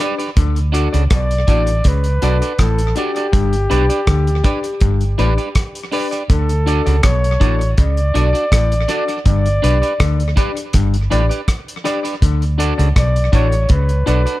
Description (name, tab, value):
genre	roots reggae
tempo	81 BPM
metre	4/4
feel	straight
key	D major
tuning	A4 = 443 Hz
part	clean electric guitar	accompaniment	0.0-14.4 s	D4 to D5	-24 LUFS	right 5 dB	tape echo
part	warm grand piano	stabs	0.0-14.2 s	D4 to D5	-24 LUFS	left 7 dB	none
part	cloth-damped thuddy drum kit	drums	0.0-14.4 s	hi-hat, kick drum, rim click	-17 LUFS	equal	tape echo
part	overdriven clav	riff	0.4-14.2 s	G2 to D3	-25 LUFS	left 7 dB	none
part	vintage muted fingered electric bass	bass	0.4-14.2 s	G1 to D2	-16 LUFS	equal	none
part	breathy flugelhorn	melody	1.1-14.4 s	G4 to D5	-21 LUFS	equal	tape echo
room	light reverb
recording	none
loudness	-13 LUFS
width	side -16 dB against mid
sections	0.0-14.4 A section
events	none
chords	0.4 D; 3.3 G; 6.3 D; 9.3 G; 12.2 D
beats	| 0.37 1.11 1.85 2.60 | 3.34 4.08 4.82 5.56 | 6.30 7.04 7.78 8.52 | 9.26 10.00 10.74 11.48 | 12.22 12.96 13.70